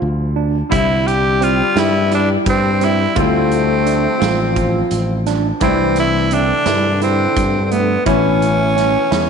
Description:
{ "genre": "progressive instrumental, band music in an uneven meter", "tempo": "172 BPM (eighths)", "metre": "7/8", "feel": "straight", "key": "D dorian", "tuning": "A4 = 440 Hz", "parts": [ { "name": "trombone with bucket mute", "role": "second line", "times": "0.0-9.3 s", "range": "D3 to A3", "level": "-22 LUFS", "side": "left 10 dB", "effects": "none" }, { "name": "bright baby grand piano", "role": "accompaniment", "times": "0.0-9.3 s", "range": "B2 to E5", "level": "-24 LUFS", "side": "left 11 dB", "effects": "none" }, { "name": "overdriven tine electric piano", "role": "arpeggios", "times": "0.0-9.3 s", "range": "A3 to F4", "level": "-21 LUFS", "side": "right 9 dB", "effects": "auto-pan" }, { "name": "fingered electric bass", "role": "bass", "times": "0.0-9.3 s", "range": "A1 to G2", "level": "-19 LUFS", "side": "equal", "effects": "none" }, { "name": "raspy tenor saxophone", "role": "melody", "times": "0.7-9.3 s", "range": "B3 to G4", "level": "-17 LUFS", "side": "right 2 dB", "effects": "none" }, { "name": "big rock drum kit", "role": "drums", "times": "0.7-9.3 s", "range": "hi-hat, kick drum, snare drum", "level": "-24 LUFS", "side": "right 4 dB", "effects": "none" } ], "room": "moderate echo chamber reverb, RT60 2.2 s", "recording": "1960s-style stereo with parts hard left and right, nothing above 10.9 kHz", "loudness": "-13 LUFS", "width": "side -6 dB against mid", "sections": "0.0-9.3 A section", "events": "none", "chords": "0.0 Dm7; 0.7 C; 3.2 Dm7; 5.6 C6; 8.1 A" }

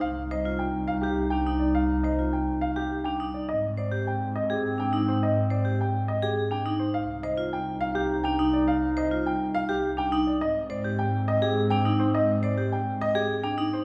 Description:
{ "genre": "classical, minimalist pattern music", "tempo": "104 BPM", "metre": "3/4", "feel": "straight", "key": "unclear", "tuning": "A4 = 441 Hz", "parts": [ { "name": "warm grand piano", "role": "melody", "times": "0.0-13.8 s", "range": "G4 to G5", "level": "-32 LUFS", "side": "equal", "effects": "none" }, { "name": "mellow clarinet", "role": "second line", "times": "0.0-13.7 s", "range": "C4 to Eb4", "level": "-33 LUFS", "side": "equal", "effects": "none" }, { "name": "rich symphonic double bass section", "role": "bass", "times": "0.0-13.7 s", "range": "C2 to Ab2", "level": "-32 LUFS", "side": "equal", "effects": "none" }, { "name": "vibraphone with hard mallets", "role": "arpeggios", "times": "0.3-13.8 s", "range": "D4 to C5", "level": "-32 LUFS", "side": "equal", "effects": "none" } ], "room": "wet recital hall reverb, RT60 1.4 s", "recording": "recorded in a church or concert hall", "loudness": "-26 LUFS", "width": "mono", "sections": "0.0-13.8 A section", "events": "none", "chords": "0.0 Cm; 3.5 Abmaj7; 7.0 Cm; 10.4 Abmaj7" }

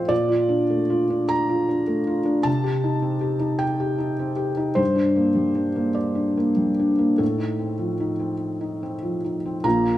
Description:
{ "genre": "neoclassical minimalist piano", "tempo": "50 BPM (dotted quarters)", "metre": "6/8", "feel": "uneven beats, rubato", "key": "unclear", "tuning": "A4 = 441 Hz", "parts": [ { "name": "felt-muted upright piano", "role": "solo", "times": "0.0-10.0 s", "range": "Bb1 to Bb5", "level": "-20 LUFS", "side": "equal", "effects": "none" } ], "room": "wet stone room reverb, RT60 1.2 s", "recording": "band playing live in one room", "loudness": "-20 LUFS", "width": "side -14 dB against mid", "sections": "0.0-9.6 A section", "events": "none", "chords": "0.1 Bbmaj7; 2.5 Cm; 4.8 Gm; 7.2 F7/A" }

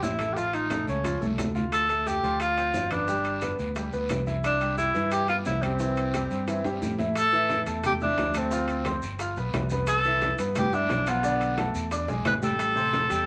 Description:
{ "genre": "latin, salsa", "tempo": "177 BPM", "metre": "4/4", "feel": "straight", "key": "C major", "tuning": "A4 = 440 Hz", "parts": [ { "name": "breathy tenor saxophone", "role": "melody", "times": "0.0-13.3 s", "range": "B3 to B4", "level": "-28 LUFS", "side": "equal", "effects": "none" }, { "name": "bright grand piano", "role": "accompaniment", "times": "0.0-13.3 s", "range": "C3 to F6", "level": "-34 LUFS", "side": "equal", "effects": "none" }, { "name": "fingered electric bass", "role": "bass", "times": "0.0-13.3 s", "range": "G1 to A2", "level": "-34 LUFS", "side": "equal", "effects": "none" }, { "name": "bongos", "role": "percussion", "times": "0.0-13.1 s", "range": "none", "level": "-43 LUFS", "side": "equal", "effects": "none" }, { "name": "congas", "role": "percussion", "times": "0.0-13.1 s", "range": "none", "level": "-38 LUFS", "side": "equal", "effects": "none" }, { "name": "guiro", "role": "percussion", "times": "0.0-13.3 s", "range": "none", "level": "-48 LUFS", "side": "equal", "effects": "none" }, { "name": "maracas", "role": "percussion", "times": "0.0-13.3 s", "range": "none", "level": "-48 LUFS", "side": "equal", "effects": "none" }, { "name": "timbales", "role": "percussion", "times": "0.0-13.3 s", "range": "none", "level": "-39 LUFS", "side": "equal", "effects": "none" } ], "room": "wet club reverb, RT60 0.8 s", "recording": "vinyl crackle", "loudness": "-26 LUFS", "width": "mono", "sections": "0.0-7.2 A section; 7.2-13.3 B section", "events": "drum fill 0.7-1.7, 6.7-7.2, 12.1-12.6", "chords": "0.4 Aaug; 1.7 Dm7; 3.1 G; 4.4 Cmaj7; 7.2 Asus4; 8.5 Dm7; 9.2 G7; 9.9 Cmaj9; 11.2 Bm7; 11.9 E7; 12.6 Am7" }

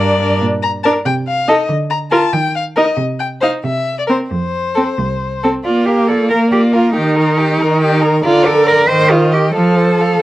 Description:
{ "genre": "quick classical-period movement for string quartet", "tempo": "93 BPM (dotted quarters)", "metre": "6/8", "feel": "rubato", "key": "Bb major", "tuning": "A4 = 441 Hz", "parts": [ { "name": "warm violin", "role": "melody", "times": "0.0-10.2 s", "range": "C5 to D6", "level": "-20 LUFS", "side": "left 4 dB", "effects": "none" }, { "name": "rich violin", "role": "second line", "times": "0.0-10.2 s", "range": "F4 to Eb5", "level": "-19 LUFS", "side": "left 2 dB", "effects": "none" }, { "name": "rich viola", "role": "accompaniment", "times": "0.0-10.1 s", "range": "D3 to F4", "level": "-15 LUFS", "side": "right 1 dB", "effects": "none" }, { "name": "rich cello", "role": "bass", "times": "0.0-10.2 s", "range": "C2 to C5", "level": "-16 LUFS", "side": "right 2 dB", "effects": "none" } ], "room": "moderate studio reverb, RT60 0.8 s", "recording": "worn, warbling old tape, cassette tape, warbly pitch drift", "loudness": "-12 LUFS", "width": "side -15 dB against mid", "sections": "0.0-5.7 A section; 5.7-10.2 B section", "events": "none", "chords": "0.4 Bb; 1.1 Cmadd11; 1.7 Bb/D; 2.3 Eb5; 3.0 Cm; 3.6 C; 4.3 F5; 5.7 Bb; 7.0 Eb; 8.2 Bb/D; 8.9 Cm/Eb; 9.5 F" }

